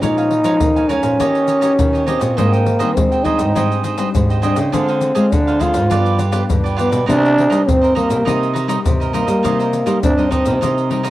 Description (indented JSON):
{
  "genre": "samba and choro",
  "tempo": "102 BPM",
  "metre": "4/4",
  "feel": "straight",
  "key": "C minor",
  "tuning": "A4 = 439 Hz",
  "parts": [
    { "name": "growling trombone", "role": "melody", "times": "0.0-11.1 s", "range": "Bb3 to F4", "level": "-17 LUFS", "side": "equal", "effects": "none" },
    { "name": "cavaquinho", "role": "accompaniment", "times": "0.0-11.1 s", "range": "D4 to Ab5", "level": "-23 LUFS", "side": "right 6 dB", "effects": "cassette tape" },
    { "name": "nylon-string guitar", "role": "accompaniment", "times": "0.0-11.1 s", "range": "F2 to G4", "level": "-25 LUFS", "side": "left 6 dB", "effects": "cassette tape" },
    { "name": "nylon-string guitar", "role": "bass", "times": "0.0-11.1 s", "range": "G2 to C4", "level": "-19 LUFS", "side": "equal", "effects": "none" },
    { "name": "maracas, surdo and pandeiro", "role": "percussion", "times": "0.0-11.1 s", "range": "none", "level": "-21 LUFS", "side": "left 2 dB", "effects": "none" }
  ],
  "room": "moderate spring reverb, RT60 2.3 s",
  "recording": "home recording on cassette",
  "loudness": "-13 LUFS",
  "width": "side -15 dB against mid",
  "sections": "0.0-11.1 A section",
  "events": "none",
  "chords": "0.0 Bbm7; 1.2 Eb7; 2.4 Abmaj9#11; 4.7 Dm7b5; 5.9 G7; 7.1 Cm7"
}